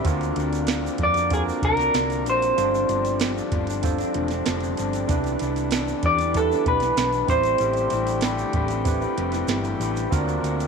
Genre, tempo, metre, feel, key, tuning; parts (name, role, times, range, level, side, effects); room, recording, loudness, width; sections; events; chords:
indie pop, bedroom pop; 95 BPM; 4/4; straight; C major; A4 = 440 Hz
electric guitar through a small old amp; accompaniment; 0.0-10.7 s; G2 to B4; -29 LUFS; left 15 dB; analog chorus, vibrato effect
overdriven tine electric piano; accompaniment; 0.0-10.7 s; C4 to C5; -30 LUFS; right 14 dB
hand-pumped harmonium; sustained chords; 0.0-10.7 s; C3 to G4; -32 LUFS; equal
hollow-body short-scale fingered electric bass; bass; 0.0-10.7 s; E1 to E#2; -29 LUFS; equal; tube saturation
soft vintage rhythm box; drums; 0.0-10.7 s; hi-hat, kick drum, snare drum; -26 LUFS; right 3 dB
egg shaker; percussion; 0.1-10.7 s; -42 LUFS; right 12 dB
electric guitar through a small old amp; melody; 1.0-8.2 s; Ab4 to D5; -22 LUFS; equal; wide subtle chorus, tape echo
light reverb; 1960s-style stereo with parts hard left and right; -20 LUFS; side -5 dB against mid
0.0-10.7 A section
0.1 D7alt; 2.6 G7sus4; 5.1 Cmaj9; 7.3 Am9; 10.1 D7alt